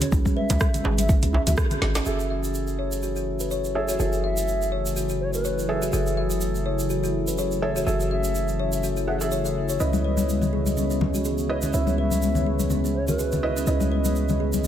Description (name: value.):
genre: afro house.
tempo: 124 BPM.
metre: 4/4.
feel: swing 55% on 16ths.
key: F# dorian.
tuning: A4 = 440 Hz.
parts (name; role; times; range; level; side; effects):
reedy bass bansuri; melody; 0.0-13.8 s; B4 to E5; -32 LUFS; left 1 dB; ping-pong delay.
kalimba; arpeggios; 0.0-14.7 s; C#4 to E5; -29 LUFS; equal; sidechain pumping, low-pass filter, ping-pong delay.
afro-pop drum kit; drums; 0.0-2.0 s; hi-hat, rim click, snare drum; -29 LUFS; right 1 dB; overdrive, small room reverb.
congas; percussion; 0.0-1.8, 9.9-14.7 s; none; -28 LUFS; left 4 dB; none.
egg shaker; percussion; 0.0-14.7 s; none; -35 LUFS; right 4 dB; none.
warm 808-style bass; bass; 0.1-14.7 s; F#1 to C#2; -27 LUFS; equal; sidechain pumping.
electronic kick drum; drums; 0.1-1.7 s; none; -21 LUFS; equal; small room reverb.
djembe; percussion; 0.1-2.0 s; none; -30 LUFS; right 1 dB; none.
warm analog pad; sustained chords; 2.1-14.7 s; C#3 to C#5; -30 LUFS; left 2 dB; lush chorus, sidechain pumping.
felt-muted upright piano; stabs; 2.1-14.7 s; E4 to F#5; -31 LUFS; right 3 dB; sidechain pumping, low-pass filter, ping-pong delay.
room: light reverb, small room ambience.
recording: none.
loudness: -22 LUFS.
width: side -10 dB against mid.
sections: 0.0-2.1 A section; 2.1-14.7 B section.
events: band accent 1.6; drum fill 1.8; filter sweep on kalimba 2.1-14.7; filter sweep on analog synth pad 2.1-14.7.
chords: 0.0 C#m; 2.1 F#m7; 9.8 C#m9.